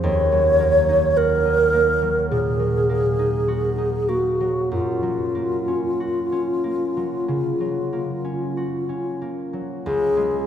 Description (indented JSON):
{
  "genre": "classical, impressionist duo for alto flute and harp",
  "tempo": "46-53 BPM",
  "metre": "4/4",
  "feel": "rubato",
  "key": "unclear",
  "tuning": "A4 = 440 Hz",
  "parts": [
    { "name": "wooden-headed alto flute", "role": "melody", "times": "0.0-10.5 s", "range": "F4 to Db5", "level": "-20 LUFS", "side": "equal", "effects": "none" },
    { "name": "concert harp", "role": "accompaniment", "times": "0.0-10.5 s", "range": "Db2 to Gb4", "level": "-24 LUFS", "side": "right 2 dB", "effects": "none" }
  ],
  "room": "wet cathedral reverb, RT60 4.5 s",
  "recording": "recorded in a church or concert hall",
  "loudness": "-19 LUFS",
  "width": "side -9 dB against mid",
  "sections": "0.0-9.8 A section",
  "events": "none",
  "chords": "0.0 Ebm7; 4.7 Gbmaj7; 9.8 Db5",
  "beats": "| 0.03 1.18 2.32 3.48 | 4.72 6.01 7.28 8.57 | 9.85"
}